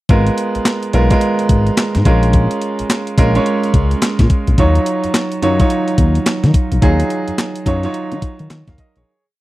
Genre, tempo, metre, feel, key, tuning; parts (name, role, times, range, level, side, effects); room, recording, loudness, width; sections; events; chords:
R&B, new jack swing; 107 BPM; 4/4; swing 62% on 16ths; A4 = 440 Hz
clear baby grand piano; accompaniment; 0.1-9.2 s; F#3 to E#5; -17 LUFS; right 2 dB
smooth gliding synth bass; bass; 0.1-9.0 s; G#1 to D#3; -15 LUFS; left 1 dB
crisp 8-bit digital drum machine; drums; 0.1-9.1 s; handclaps, hi-hat, kick drum, snare drum; -15 LUFS; equal
little or no reverb; dry, close 1970s-style studio recording; -12 LUFS; side -17 dB against mid
0.1-9.1 verse
fade-out 6.8-9.1
0.1 G#m69; 2.1 A#m7; 4.6 D#m9